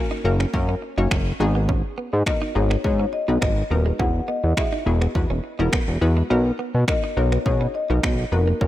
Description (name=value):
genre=dance-pop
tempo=104 BPM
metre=4/4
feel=straight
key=B major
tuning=A4 = 436 Hz
part: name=marimba with medium mallets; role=melody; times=0.0-8.7 s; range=A#4 to F#5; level=-27 LUFS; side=left 3 dB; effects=ping-pong delay
part: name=hollow square pluck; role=accompaniment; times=0.0-8.7 s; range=A#3 to C#5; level=-28 LUFS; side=left 3 dB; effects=chorus, sidechain pumping
part: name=direct-recorded clean electric guitar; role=riff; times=0.1-8.7 s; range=G#3 to D#4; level=-32 LUFS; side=right 4 dB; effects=wide subtle chorus
part: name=fat analog bass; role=bass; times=0.2-8.7 s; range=D#1 to B2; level=-20 LUFS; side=equal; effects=sidechain pumping
part: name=punchy analog drum machine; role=drums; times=0.4-8.7 s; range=finger snaps, kick drum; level=-24 LUFS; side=equal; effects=none
room=light reverb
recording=rough home demo mix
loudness=-19 LUFS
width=side -14 dB against mid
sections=0.0-8.7 A section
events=kick muted 6.3-6.9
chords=0.0 F#; 1.4 G#m7; 4.0 Eadd9; 6.3 Bmaj7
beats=0.53 1.11 | 1.69 2.27 2.84 3.42 | 4.00 4.57 5.15 5.73 | 6.30 6.88 7.46 8.03 | 8.61